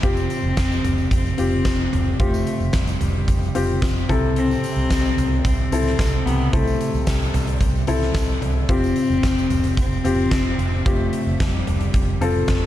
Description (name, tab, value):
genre	piano-driven pop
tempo	111 BPM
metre	4/4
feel	straight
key	unclear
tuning	A4 = 440 Hz
part	dark cello	melody	0.0-12.5 s	G3 to C4	-25 LUFS	left 2 dB	none
part	warm grand piano	accompaniment	0.0-12.7 s	C3 to A4	-25 LUFS	left 4 dB	none
part	vintage muted fingered electric bass	bass	0.0-12.7 s	F1 to C2	-23 LUFS	equal	none
part	huge arena drum kit	drums	0.0-12.6 s	hi-hat, kick drum, snare drum, toms	-22 LUFS	right 1 dB	none
part	tambourine	percussion	0.2-10.4 s	none	-43 LUFS	right 7 dB	none
room	light reverb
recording	dark, warm production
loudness	-18 LUFS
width	side -13 dB against mid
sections	0.0-12.7 A section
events	none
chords	0.0 Fsus2; 4.1 C6; 8.7 Fsus2